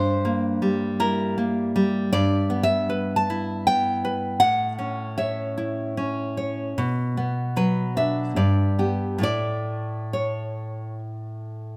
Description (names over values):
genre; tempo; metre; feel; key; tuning
romantic piece for solo classical guitar; 66-81 BPM; 3/4; rubato; unclear; A4 = 440 Hz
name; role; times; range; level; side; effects
nylon-string guitar; solo; 0.0-11.8 s; G2 to A5; -24 LUFS; equal; none
room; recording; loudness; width
moderate scoring stage reverb, RT60 1.6 s; close, detailed microphones; -24 LUFS; mono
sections
0.0-11.8 A section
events
none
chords
0.0 Edim/G; 2.1 Em/G; 4.4 A; 6.8 Bm; 8.4 G; 9.2 A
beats
0.62 1.37 | 2.12 2.89 3.67 | 4.42 5.19 5.97 | 6.78 7.58 8.38 | 9.24 10.14 11.02